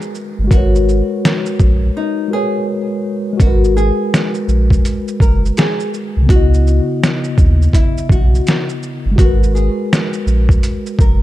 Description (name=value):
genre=lo-fi hip hop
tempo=83 BPM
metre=4/4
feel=swing 66% on 16ths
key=G# minor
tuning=A4 = 438 Hz
part: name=nylon-string guitar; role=melody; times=0.0-11.2 s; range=D#4 to A#4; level=-22 LUFS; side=left 3 dB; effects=analog delay
part: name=mellow tine electric piano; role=accompaniment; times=0.0-11.2 s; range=C#3 to D#5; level=-20 LUFS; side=left 1 dB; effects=medium stereo tremolo
part: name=trip hop sampler-style drum kit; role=drums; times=0.0-11.2 s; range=hi-hat, kick drum, shaker, snare drum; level=-14 LUFS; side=equal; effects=overdrive
part: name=warm sub bass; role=bass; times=0.4-11.2 s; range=F#1 to D#2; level=-14 LUFS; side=equal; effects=none
room=little or no reverb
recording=dark, warm production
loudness=-12 LUFS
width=side -15 dB against mid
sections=0.0-3.4 A section; 3.4-11.2 B section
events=break 2.0-3.4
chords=0.0 G#m9; 0.5 G#m11; 3.4 G#m9; 6.3 C#m9; 9.2 G#m9